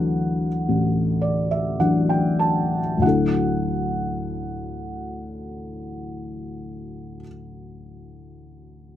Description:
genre	classical, lyrical solo piano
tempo	48-60 BPM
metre	4/4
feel	rubato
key	D major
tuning	A4 = 441 Hz
part	felt-muted upright piano	solo	0.0-9.0 s	A1 to A5	-22 LUFS	left 1 dB	none
room	light reverb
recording	close, detailed microphones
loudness	-20 LUFS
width	side -11 dB against mid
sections	0.0-3.0 A section; 3.0-7.8 B section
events	slowing down 0.0-3.0; felt piano fill 0.7-3.0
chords	0.0 Dadd9

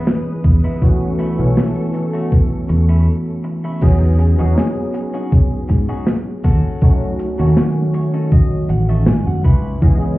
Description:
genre	vaporwave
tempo	80 BPM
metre	4/4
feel	straight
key	unclear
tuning	A4 = 439 Hz
part	barky tine electric piano	accompaniment	0.0-10.2 s	D#3 to D#5	-20 LUFS	equal	ensemble chorus, tape echo
part	soft string machine	sustained chords	0.0-3.0 s	A4 to D#6	-32 LUFS	left 1 dB	ensemble chorus
part	clean electric guitar	riff	0.0-10.1 s	A3 to B5	-31 LUFS	left 2 dB	lush chorus, tape echo
part	modern studio drum kit	drums	0.1-10.0 s	crash cymbal, hi-hat, snare drum	-19 LUFS	right 1 dB	none
part	fingered electric bass	bass	0.4-10.2 s	A1 to G#2	-14 LUFS	equal	tube saturation
part	electronic kick drum	drums	0.4-10.0 s	none	-13 LUFS	equal	overdrive
room	small room ambience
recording	heard muffled through a wall, club reverb, cassette tape, EQ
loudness	-13 LUFS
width	side -18 dB against mid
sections	0.0-3.8 A section; 3.8-10.2 B section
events	break 3.1-3.8; clean electric guitar fill 7.6-9.8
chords	0.0 C#m9; 0.8 B9sus4; 3.8 Emaj13; 6.4 D#m7b5; 9.4 C#m9

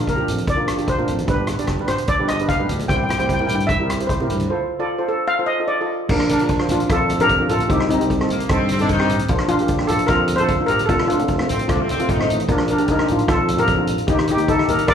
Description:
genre	calypso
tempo	150 BPM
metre	4/4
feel	straight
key	Bb major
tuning	A4 = 441 Hz
part	steel pan	accompaniment	0.0-14.9 s	A3 to Eb5	-24 LUFS	right 2 dB	slapback echo
part	mellow tuba	bass	0.0-14.9 s	F1 to C3	-24 LUFS	equal	none
part	congas	percussion	0.0-14.8 s	none	-29 LUFS	right 1 dB	none
part	steel pan	melody	0.1-14.9 s	C4 to G5	-20 LUFS	left 1 dB	slapback echo
part	street-band drum kit	drums	0.1-14.9 s	crash cymbal, hi-hat, kick drum, rim click	-23 LUFS	equal	none
part	warm horn section	second line	8.3-12.4 s	C3 to Eb4	-25 LUFS	left 2 dB	slapback echo
room	light reverb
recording	live gig heard through the venue's PA, club reverb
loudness	-16 LUFS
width	side -8 dB against mid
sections	0.0-6.1 A section; 6.1-14.9 B section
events	steel pan solo 0.0-6.1; drum fill 11.7-12.5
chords	0.0 Bb; 1.3 G; 2.9 C7; 4.5 F7; 6.1 Bbmaj7; 7.7 Cm; 9.3 Bb; 10.9 F7; 12.5 Bb; 14.1 Eb

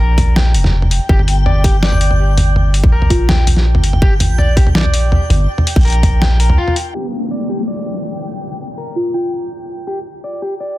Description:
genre	half-time drum and bass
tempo	164 BPM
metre	4/4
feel	half-time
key	G minor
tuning	A4 = 440 Hz
part	electric guitar at the edge of break-up	arpeggios	0.0-10.8 s	F4 to G5	-23 LUFS	left 2 dB	low-pass filter, dub echo
part	long sustained 808-style bass	bass	0.0-6.6 s	F1 to C2	-13 LUFS	equal	none
part	backwards swelling texture	texture	0.0-10.8 s	G5	-28 LUFS	left 1 dB	built-in reverb
part	boom bap sampler-style drum kit	drums	0.2-6.8 s	hi-hat, snare drum, toms	-16 LUFS	equal	small room reverb
part	electronic kick drum	drums	0.2-6.1 s	none	-12 LUFS	equal	small room reverb
part	buzzing marimba with soft mallets	melody	3.1-3.3, 9.0-9.5 s	F4	-22 LUFS	equal	dub echo
part	downlifter	sound effects	6.9-9.9 s	none	-23 LUFS	left 1 dB	none
room	little or no reverb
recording	dense, heavily limited modern master, low-pass filter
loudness	-11 LUFS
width	side -16 dB against mid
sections	0.0-6.9 A section; 6.9-10.8 B section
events	drop 0.0-6.9; break 6.6-6.9; filter sweep on clean electric guitar 6.9-10.8; filter sweep 6.9-10.8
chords	0.0 G5

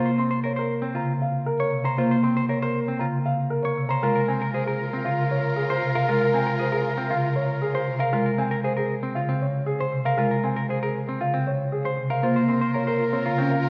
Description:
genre	classical, minimalist pattern music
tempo	117 BPM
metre	4/4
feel	straight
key	Db major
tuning	A4 = 440 Hz
part	warm concert grand piano	melody	0.0-13.7 s	Ab4 to C6	-29 LUFS	equal	none
part	marimba with medium mallets	accompaniment	0.0-13.6 s	C3 to Db4	-27 LUFS	equal	none
part	semi-hollow electric guitar	arpeggios	0.0-13.6 s	C4 to Db5	-32 LUFS	equal	none
part	clear oboe	second line	4.0-8.0, 12.2-13.7 s	Bb4	-35 LUFS	equal	none
part	warm studio violin section	sustained chords	4.0-8.0, 12.2-13.7 s	F4 to Bb4	-34 LUFS	equal	none
room	wet scoring stage reverb, RT60 2.1 s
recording	worn, warbling old tape, cassette tape, warbly pitch drift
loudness	-24 LUFS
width	mono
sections	0.0-13.7 A section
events	none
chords	0.0 Bbm; 4.0 Db6 (rootless); 12.2 Bbm

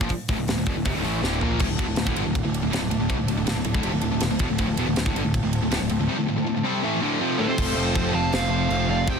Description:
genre	heavy metal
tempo	161 BPM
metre	4/4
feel	straight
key	D minor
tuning	A4 = 440 Hz
part	crunchy overdriven guitar	riff	0.0-9.2 s	D2 to F4	-27 LUFS	equal	none
part	high-gain distorted guitar	riff	0.0-9.2 s	D2 to C4	-27 LUFS	equal	distortion
part	fuzz picked electric bass	bass	0.0-9.2 s	D1 to C2	-28 LUFS	equal	overdrive
part	tight metal drum kit	drums	0.0-9.2 s	crash cymbal, hi-hat, kick drum, ride cymbal, snare drum, toms	-28 LUFS	equal	soft clipping on kick
part	warm studio string section	sustained chords	1.6-9.2 s	F3 to A4	-36 LUFS	left 2 dB	none
part	high-gain lead guitar	melody	7.4-9.2 s	C5 to A5	-27 LUFS	right 3 dB	distortion, ping-pong delay
part	high-gain lead guitar	second line	7.4-9.2 s	A4 to F5	-33 LUFS	right 4 dB	distortion, ping-pong delay
room	light reverb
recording	dense, heavily limited modern master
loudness	-21 LUFS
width	side -6 dB against mid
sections	0.0-1.6 A section; 1.6-7.6 B section; 7.6-9.2 C section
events	drum fill 1.2-1.6; half time 7.6-9.2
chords	0.0 Dm; 7.6 F

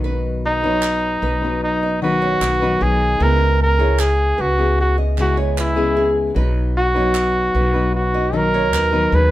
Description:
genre	acoustic pop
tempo	76 BPM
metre	4/4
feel	straight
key	B major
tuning	A4 = 440 Hz
part	fingerpicked plugged-in steel-string acoustic guitar	accompaniment	0.0-9.3 s	B2 to B4	-22 LUFS	left 3 dB	none
part	nylon-string guitar	arpeggios	0.0-9.3 s	B3 to D#5	-28 LUFS	right 5 dB	none
part	upright bass	bass	0.0-9.3 s	B1 to D#2	-20 LUFS	equal	none
part	clear flugelhorn	melody	0.5-9.3 s	D#4 to B4	-18 LUFS	right 1 dB	none
part	group handclap	percussion	0.8-8.9 s	none	-28 LUFS	right 5 dB	none
room	moderate studio reverb, RT60 0.7 s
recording	band playing live in one room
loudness	-15 LUFS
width	side -15 dB against mid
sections	0.0-9.3 A section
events	none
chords	0.0 B; 3.2 C#m7; 6.4 B

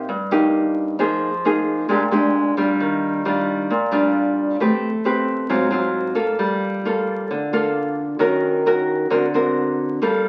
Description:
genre	bossa nova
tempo	133 BPM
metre	4/4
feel	straight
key	unclear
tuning	A4 = 440 Hz
part	nylon-string guitar	solo	0.0-10.3 s	G2 to B4	-20 LUFS	equal	none
room	wet studio reverb, RT60 0.7 s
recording	very old 78 rpm record, vinyl crackle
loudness	-20 LUFS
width	mono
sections	0.0-10.0 A section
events	none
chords	0.0 Cm7 (rootless); 1.0 Fm7; 1.9 Bb6; 2.8 Ebmaj9; 4.6 Am9; 5.5 Ab13; 6.4 Gm9; 8.2 Ebm7; 9.1 Daug7

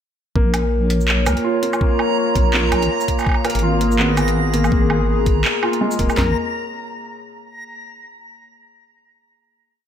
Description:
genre	half-time drum and bass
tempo	165 BPM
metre	4/4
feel	swing 58% on 16ths, half-time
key	Bb minor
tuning	A4 = 440 Hz
part	dark analog pad	sustained chords	0.7-6.3 s	Bb3 to Db5	-23 LUFS	left 1 dB	chorus, phaser, sidechain pumping
part	felt-muted upright piano	arpeggios	0.4-6.3 s	Ab3 to Bb4	-22 LUFS	left 1 dB	ping-pong delay
part	deep soft wobble bass	bass	0.4-6.3 s	Eb1 to Db2	-19 LUFS	equal	chorus
part	trap drum kit	drums	0.4-6.3 s	handclaps, kick drum, snare drum, toms	-19 LUFS	equal	none
part	backwards swelling texture	texture	1.4-6.2 s	Bb5	-28 LUFS	right 3 dB	built-in reverb
part	drum and bass drum kit	drums	0.5-6.2 s	handclaps, hi-hat, shaker, woodblock	-23 LUFS	right 1 dB	none
room	moderate plate reverb, RT60 1.2 s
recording	dreamy mix soaked in reverb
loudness	-15 LUFS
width	side -9 dB against mid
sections	0.4-6.2 drop; 6.2-7.6 final chord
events	drop 0.4-6.2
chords	0.4 Bbm; 3.3 Abmadd9; 6.2 Bbm

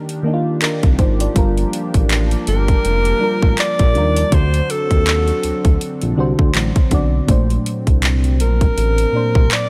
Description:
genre	contemporary R&B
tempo	81 BPM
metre	4/4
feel	swing 58% on 16ths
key	unclear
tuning	A4 = 438 Hz
part	mellow FM electric piano	accompaniment	0.0-9.7 s	Bb2 to D5	-24 LUFS	equal	chorus, phaser
part	chorused pulse-width pad	sustained chords	0.0-9.7 s	Eb3 to G4	-29 LUFS	equal	none
part	trap drum kit	drums	0.1-9.7 s	handclaps, hi-hat, kick drum	-19 LUFS	equal	none
part	smooth synth bass	bass	0.8-9.5 s	F1 to Eb2	-20 LUFS	equal	none
part	warm alto saxophone	melody	2.5-9.7 s	A4 to D5	-22 LUFS	equal	digital delay
room	little or no reverb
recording	none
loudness	-16 LUFS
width	mono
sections	0.0-9.7 A section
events	none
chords	0.0 Ebmaj7; 1.4 Gm7; 4.3 D7; 7.3 Bbmaj9

